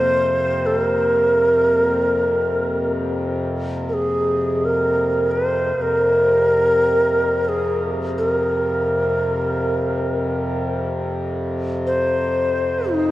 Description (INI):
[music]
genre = world meditative, free-time meditation music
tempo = free time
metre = none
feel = none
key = F minor pentatonic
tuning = A4 = 439 Hz
[part]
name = bright reedy low Native American-style wooden flute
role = melody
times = 0.0-13.1 s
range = Eb4 to C5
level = -18 LUFS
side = equal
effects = shimmer reverb
[part]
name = hand-pumped harmonium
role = drone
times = 0.0-13.1 s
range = F2 to C3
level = -23 LUFS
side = left 1 dB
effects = stereo widening
[part]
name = quartz singing bowl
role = texture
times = 0.0-3.3 s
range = Bb3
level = -38 LUFS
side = right 2 dB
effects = none
[sound]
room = wet huge ambient reverb, RT60 4.6 s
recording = worn, warbling old tape, cassette tape, warbly pitch drift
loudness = -17 LUFS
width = side -15 dB against mid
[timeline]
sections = 0.0-13.1 A section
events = none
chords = none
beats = free time